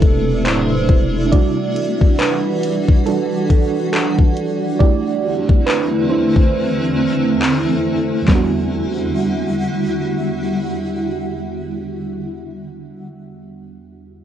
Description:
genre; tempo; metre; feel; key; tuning
contemporary R&B; 69 BPM; 4/4; swing 58% on 16ths; E minor; A4 = 439 Hz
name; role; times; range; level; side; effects
mellow FM electric piano; accompaniment; 0.0-14.2 s; E2 to D5; -21 LUFS; right 7 dB; chorus, cassette tape
granular cloud pad; sustained chords; 0.0-11.8 s; E2 to F#4; -19 LUFS; left 1 dB; built-in reverb, phaser, cassette tape
long sustained 808-style bass; bass; 0.0-1.3 s; D1 to E1; -21 LUFS; left 1 dB; none
smooth R&B drum kit; drums; 0.0-8.5 s; handclaps, hi-hat, kick drum, snare drum; -14 LUFS; left 1 dB; vintage 12-bit sampler grit, cassette tape
room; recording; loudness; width
light reverb; home recording on cassette; -15 LUFS; side -10 dB against mid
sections
0.0-8.3 A section; 8.3-11.8 B section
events
FM electric piano solo 0.0-8.3; kick muted 6.5-8.3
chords
0.0 C69/E; 1.3 Em9; 4.8 C69/E; 8.3 Em9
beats
0.46 | 1.32 2.19 3.06 3.93 | 4.80 5.67 6.54 7.41 | 8.28 9.15 10.02 10.89

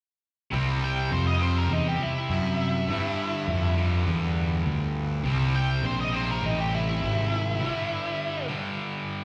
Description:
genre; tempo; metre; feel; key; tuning
rock; 102 BPM; 4/4; straight; C mixolydian; A4 = 443 Hz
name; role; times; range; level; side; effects
cranked stack guitar; riff; 0.5-9.2 s; G2 to C4; -32 LUFS; equal; overdrive, slapback echo
fuzz picked electric bass; bass; 0.5-7.6 s; Ab1 to G2; -28 LUFS; equal; overdrive
octave-fuzz lead guitar; melody; 0.8-8.5 s; Eb4 to G5; -33 LUFS; equal; distortion, slapback echo
room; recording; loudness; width
little or no reverb; live gig heard through the venue's PA, club reverb; -27 LUFS; mono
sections
0.5-9.2 A section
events
break 7.6-9.2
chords
0.5 C; 2.9 G5; 5.2 C7; 7.6 G5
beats
| 0.53 1.12 1.71 2.30 | 2.89 3.48 4.07 4.66 | 5.25 5.84 6.43 7.01 | 7.60 8.19 8.78

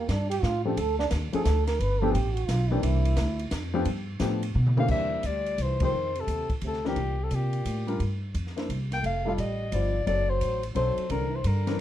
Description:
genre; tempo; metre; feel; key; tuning
jazz, small-group swing and bop; 174 BPM; 3/4; swing 65% on 8ths; C mixolydian; A4 = 440 Hz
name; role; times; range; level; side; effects
mellow trombone; second line; 0.0-11.8 s; Bb2 to B4; -33 LUFS; right 5 dB; none
upright bass; bass; 0.0-11.8 s; F1 to C3; -27 LUFS; equal; none
open jazz drum kit; drums; 0.1-11.7 s; crash cymbal, hi-hat, kick drum, ride cymbal, snare drum, toms; -36 LUFS; equal; none
dark baby grand piano; accompaniment; 0.7-11.8 s; E3 to C5; -31 LUFS; left 3 dB; none
breathy soprano saxophone; melody; 4.8-11.8 s; G4 to G5; -30 LUFS; left 3 dB; none
room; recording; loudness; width
light reverb; dark, warm production; -25 LUFS; side -12 dB against mid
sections
0.0-4.9 A section; 4.9-11.8 B section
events
trombone solo 0.0-4.9; drum fill 4.6-4.9; band accent 5.8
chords
0.4 F69/A; 0.8 D5; 1.8 G9; 2.8 C9; 3.5 F69; 3.9 G9; 4.9 C9; 5.9 F7; 7.0 C5; 8.0 Gm7; 8.7 C5; 9.0 F9; 10.1 F#dim7; 11.1 C9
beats
0.09 0.43 | 0.77 1.12 1.46 | 1.80 2.15 2.49 | 2.83 3.18 3.52 | 3.86 4.21 4.55 | 4.89 5.24 5.58 | 5.93 6.27 6.62 | 6.96 7.31 7.65 | 8.00 8.34 8.69 | 9.03 9.38 9.72 | 10.07 10.41 10.76 | 11.10 11.45 11.79

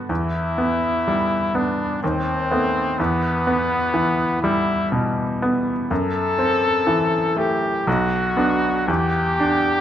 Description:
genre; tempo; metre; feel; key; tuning
classical, romantic duo for trumpet and grand piano; 62 BPM; 3/4; rubato; unclear; A4 = 442 Hz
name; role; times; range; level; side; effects
bright grand piano; accompaniment; 0.0-9.8 s; B1 to D4; -21 LUFS; equal; none
clear trumpet; melody; 0.1-9.8 s; B3 to A4; -21 LUFS; left 2 dB; none
room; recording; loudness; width
light reverb; close, detailed microphones; -18 LUFS; side -10 dB against mid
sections
0.0-9.8 A section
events
none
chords
0.1 Em; 2.0 B7/D#; 3.0 Em; 5.9 F#m7b5; 7.9 Bm; 8.9 Em7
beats
| 0.10 1.07 2.02 | 2.99 3.94 4.93 | 5.90 6.87 7.87 | 8.88

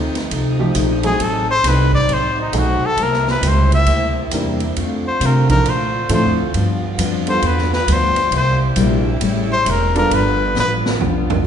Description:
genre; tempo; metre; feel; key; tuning
jazz, big band swing; 135 BPM; 4/4; swing 65% on 8ths; unclear; A4 = 440 Hz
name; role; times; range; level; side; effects
picked steel-string acoustic guitar; accompaniment; 0.0-11.5 s; G2 to A4; -23 LUFS; left 5 dB; none
warm saxophone section; sustained chords; 0.0-11.5 s; B2 to F4; -27 LUFS; right 1 dB; none
upright bass; bass; 0.0-11.5 s; E1 to C3; -19 LUFS; right 1 dB; none
swinging big-band drum kit; drums; 0.2-11.4 s; hi-hat, kick drum, ride cymbal, snare drum, toms; -25 LUFS; right 2 dB; none
warm baby grand piano; accompaniment; 0.6-10.5 s; F3 to Bb4; -23 LUFS; right 3 dB; none
warm trumpet; melody; 1.1-10.8 s; D#4 to E5; -18 LUFS; left 2 dB; none
room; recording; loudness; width
wet recital hall reverb, RT60 1.4 s; recorded in a church or concert hall, nothing above 10.7 kHz; -14 LUFS; side -8 dB against mid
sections
0.0-11.5 A section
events
trumpet solo 0.0-11.5; drum fill 10.5-11.4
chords
0.0 F7; 1.2 F#dim7; 3.0 C7; 4.8 Dm7; 6.5 G7; 8.3 C7; 9.2 A7; 10.1 G7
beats
0.30 0.75 | 1.20 1.64 2.09 2.53 | 2.98 3.42 3.87 4.32 | 4.76 5.21 5.65 6.10 | 6.54 6.99 7.43 7.88 | 8.32 8.77 9.21 9.66 | 10.10 10.55 10.99 11.44

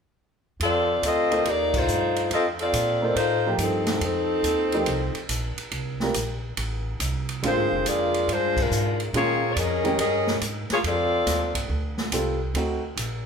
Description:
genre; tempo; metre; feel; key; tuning
jazz, big band swing; 141 BPM; 4/4; swing 66% on 8ths; F mixolydian; A4 = 440 Hz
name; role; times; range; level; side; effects
warm saxophone section; melody; 0.6-11.7 s; F3 to Eb5; -22 LUFS; left 1 dB; none
upright bass; bass; 0.6-13.3 s; F1 to Bb2; -30 LUFS; right 1 dB; none
swinging big-band drum kit; drums; 0.6-13.1 s; crash cymbal, hi-hat, kick drum, ride cymbal, snare drum; -31 LUFS; right 1 dB; none
warm baby grand piano; accompaniment; 1.3-12.8 s; D3 to C5; -29 LUFS; right 2 dB; none
room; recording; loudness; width
moderate large studio reverb, RT60 1.3 s; band playing live in one room; -22 LUFS; side -6 dB against mid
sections
0.6-13.3 A section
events
band accent 1.7, 8.5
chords
0.6 F7; 5.7 C5; 6.6 Am; 7.4 Bb7; 9.1 Bbm7; 10.8 F7; 12.5 D7b9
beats
| 0.61 1.04 1.46 1.89 | 2.31 2.74 3.17 3.59 | 4.02 4.45 4.87 5.30 | 5.73 6.15 6.58 7.00 | 7.43 7.86 8.29 8.71 | 9.14 9.56 9.99 10.42 | 10.84 11.27 11.69 12.12 | 12.55 12.97

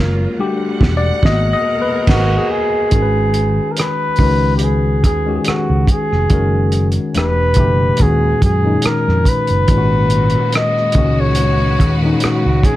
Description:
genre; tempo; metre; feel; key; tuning
R&B, neo-soul; 71 BPM; 4/4; straight; unclear; A4 = 442 Hz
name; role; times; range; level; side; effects
tine electric piano; accompaniment; 0.0-12.8 s; A#2 to D#5; -18 LUFS; left 3 dB; none
clear studio string section; sustained chords; 0.0-2.9, 9.7-12.8 s; A#2 to F#5; -25 LUFS; right 1 dB; none
mellow fretless electric bass; bass; 0.0-12.6 s; E1 to F#2; -16 LUFS; right 1 dB; none
cloth-damped thuddy drum kit; drums; 0.8-12.8 s; crash cymbal, hi-hat, kick drum, rim click, snare drum; -16 LUFS; right 1 dB; none
warm flugelhorn; melody; 2.1-12.8 s; F#4 to D#5; -18 LUFS; equal; none
room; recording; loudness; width
small room ambience; none; -12 LUFS; side -15 dB against mid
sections
0.0-2.9 A section; 2.9-12.8 B section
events
band accent 0.0-2.9; tine electric piano solo 0.0-2.9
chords
0.4 Em11; 1.2 G#m9; 2.9 G#m7; 4.2 C#7sus4; 6.3 F#; 7.1 Em11; 8.0 D#m11; 9.7 G#m9; 10.9 C#7sus4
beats
0.38 1.23 2.07 | 2.92 3.76 4.61 5.45 | 6.30 7.14 7.99 8.83 | 9.68 10.52 11.37 12.21

